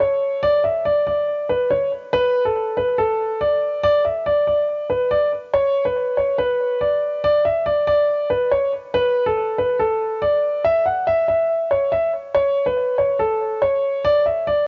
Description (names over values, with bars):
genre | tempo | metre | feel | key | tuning
hip hop | 141 BPM | 4/4 | half-time | unclear | A4 = 440 Hz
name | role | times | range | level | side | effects
dark grand piano | solo | 0.0-14.7 s | A4 to F#5 | -19 LUFS | equal | analog delay
room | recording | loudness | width
light reverb | worn, warbling old tape, cassette tape, warbly pitch drift, nothing above 7.6 kHz | -19 LUFS | mono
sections
0.0-3.8 A section; 3.8-14.7 B section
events
none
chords
none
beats
0.00 | 0.43 0.85 1.28 1.71 | 2.13 2.56 2.98 3.41 | 3.83 4.26 4.68 5.11 | 5.54 5.96 6.39 6.81 | 7.24 7.66 8.09 8.52 | 8.94 9.37 9.79 10.22 | 10.64 11.07 11.49 11.92 | 12.34 12.77 13.20 13.62 | 14.05 14.47